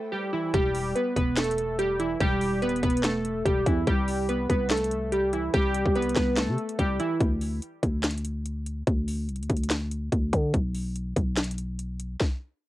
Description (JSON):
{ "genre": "hip hop, trap", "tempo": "144 BPM", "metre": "4/4", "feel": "half-time", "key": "E minor", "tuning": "A4 = 440 Hz", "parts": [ { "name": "glassy digital keys", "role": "melody", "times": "0.0-7.2 s", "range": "E3 to B4", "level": "-26 LUFS", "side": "right 1 dB", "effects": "chorus, low-pass filter, cassette tape" }, { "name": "warm symphonic string section", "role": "sustained chords", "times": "0.0-0.5 s", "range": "E4 to G5", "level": "-46 LUFS", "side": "left 1 dB", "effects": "none" }, { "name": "growling 808-style bass", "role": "bass", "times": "0.5-12.2 s", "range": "D1 to D3", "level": "-29 LUFS", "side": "equal", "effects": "none" }, { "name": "trap drum kit", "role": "drums", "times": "0.5-12.3 s", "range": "handclaps, hi-hat, kick drum, snare drum", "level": "-27 LUFS", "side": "equal", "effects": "cassette tape" } ], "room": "little or no reverb", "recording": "home recording on cassette", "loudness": "-24 LUFS", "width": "side -16 dB against mid", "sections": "0.5-12.7 A section", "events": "break 7.2-12.7", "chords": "0.0 Cmaj7; 0.5 Em; 3.9 Cmaj7; 7.2 N.C." }